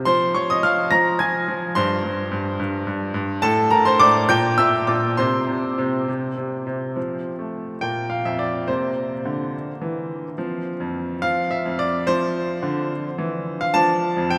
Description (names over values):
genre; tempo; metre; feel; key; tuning
classical-period piano sonatina; 71 BPM (dotted quarters); 6/8; rubato; F major from 3.4 s; A4 = 439 Hz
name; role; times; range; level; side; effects
bright baby grand piano; solo; 0.0-14.4 s; F2 to Bb6; -22 LUFS; equal; none
room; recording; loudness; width
wet cathedral reverb, RT60 5.8 s; in a vast, echoing space; -22 LUFS; mono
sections
0.0-7.0 A section; 7.0-14.4 B section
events
none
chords
0.1 Fm; 1.8 C5/G; 3.4 Am; 4.3 Gm/Bb; 5.2 N.C.; 7.0 F; 7.8 Bb5; 8.7 C7; 10.4 F5; 13.7 F69